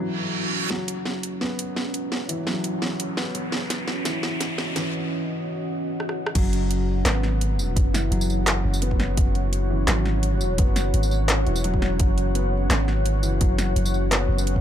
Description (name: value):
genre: half-time drum and bass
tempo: 170 BPM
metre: 4/4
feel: half-time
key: unclear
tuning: A4 = 440 Hz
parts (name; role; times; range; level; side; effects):
- deep dark ambient pad; sustained chords; 0.0-14.6 s; C#4 to B5; -30 LUFS; right 1 dB; chorus, built-in reverb, sidechain pumping
- felt-muted upright piano; arpeggios; 0.0-14.6 s; E3 to B3; -29 LUFS; left 2 dB; dub echo
- reverse cymbal and riser; sound effects; 0.1-4.9 s; none; -32 LUFS; right 2 dB; none
- long sustained 808-style bass; bass; 0.7-14.6 s; E1 to A1; -24 LUFS; equal; high-pass filter
- drum and bass drum kit; drums; 0.7-14.5 s; crash cymbal, handclaps, hi-hat, rim click, snare drum, tambourine; -27 LUFS; right 1 dB; overdrive, high-pass filter on snare, small room ambience, high-pass filter on hats, high-pass filter on perc, high-pass filter on cymbals
- electronic kick drum; drums; 6.4-14.6 s; none; -22 LUFS; equal; small room ambience
room: little or no reverb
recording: dark, warm production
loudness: -21 LUFS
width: side -10 dB against mid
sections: 0.7-6.4 A section; 6.4-14.6 B section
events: reverse cymbal 0.1-0.7; build-up 0.7-6.4; drum fill 0.7-4.9, 6.0-6.4; riser 0.7-4.9; break 4.9-6.4; drop 6.4-14.6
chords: 0.0 F#5